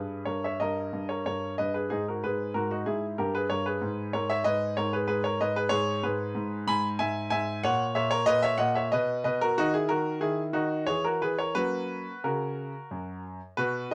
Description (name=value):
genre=classical-period piano sonatina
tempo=93 BPM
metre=3/4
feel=rubato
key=G# minor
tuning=A4 = 440 Hz
part: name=clear grand piano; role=solo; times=0.0-13.9 s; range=F#2 to B5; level=-29 LUFS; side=equal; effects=none
room=light reverb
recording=dark, warm production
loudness=-29 LUFS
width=mono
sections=0.0-13.6 A section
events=none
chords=0.0 D#7b13/G; 1.9 G#5; 3.2 Gdim; 3.8 G#m; 5.7 E/G#; 7.6 A#dim; 8.9 B; 9.6 D#madd11; 10.9 E69; 11.6 F#